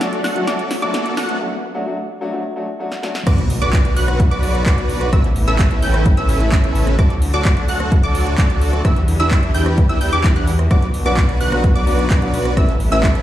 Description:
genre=EDM, festival progressive house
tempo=129 BPM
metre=4/4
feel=straight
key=B minor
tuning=A4 = 436 Hz
part: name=warm baby grand piano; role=accompaniment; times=0.0-3.1, 10.7-13.1 s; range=F#3 to F#4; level=-23 LUFS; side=left 2 dB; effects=sidechain pumping, tape echo
part: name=muted studio string section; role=sustained chords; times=0.0-13.2 s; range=C#3 to D5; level=-28 LUFS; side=left 1 dB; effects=sidechain pumping
part: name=wide unison pluck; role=arpeggios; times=0.0-13.2 s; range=D6 to G6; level=-26 LUFS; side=equal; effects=sidechain pumping, tape echo
part: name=dense compressed supersaw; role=riff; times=0.0-13.2 s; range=C#4 to G5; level=-23 LUFS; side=right 1 dB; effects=sidechain pumping, low-pass filter, tape echo
part: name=big-room dance drum kit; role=drums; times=0.0-13.2 s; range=crash cymbal, handclaps, hi-hat, rim click, snare drum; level=-26 LUFS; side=equal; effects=none
part: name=riser and impact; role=sound effects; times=0.0-5.1 s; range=none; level=-26 LUFS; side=equal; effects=none
part: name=wide detuned saw bass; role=bass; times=3.3-13.2 s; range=A1 to E2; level=-19 LUFS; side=equal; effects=chorus, sidechain pumping
part: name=electronic kick drum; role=drums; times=3.3-13.1 s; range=none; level=-15 LUFS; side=equal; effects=none
room=light reverb, digital ambience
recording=played on a big sound system in a bare room, stone room reverb, high-pass filter, lossy compression artefacts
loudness=-14 LUFS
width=side -13 dB against mid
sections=0.0-3.3 A section; 3.3-13.2 B section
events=build-up 0.0-3.3; drum fill 0.0-1.4, 2.9-3.3; riser 0.0-1.4; filter sweep on synth pluck 0.0-3.3; break 1.4-3.3; drop 3.3-13.2; impact 3.3-5.1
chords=0.0 D; 3.3 Bm; 5.1 Aadd9; 7.0 D; 8.8 Em7; 10.7 Bm; 12.6 Aadd9

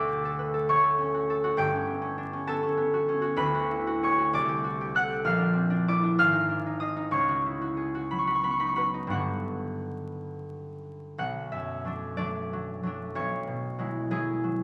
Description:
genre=classical, solo harp piece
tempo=57-68 BPM (dotted quarters)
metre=6/8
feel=rubato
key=unclear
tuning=A4 = 439 Hz
part: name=concert harp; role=solo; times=0.0-14.6 s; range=G1 to F#6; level=-28 LUFS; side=equal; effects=none
room=wet recital hall reverb, RT60 1.6 s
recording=vinyl crackle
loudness=-28 LUFS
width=mono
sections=0.0-11.2 A section; 11.2-14.6 B section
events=none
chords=0.0 Dmaj7; 1.6 Gmaj7#11; 3.4 Dadd9; 4.3 Csus2; 5.2 A#add9; 6.2 G#5; 7.1 C#m11; 9.1 Gmaj7; 11.2 Bm7; 13.2 E69/B

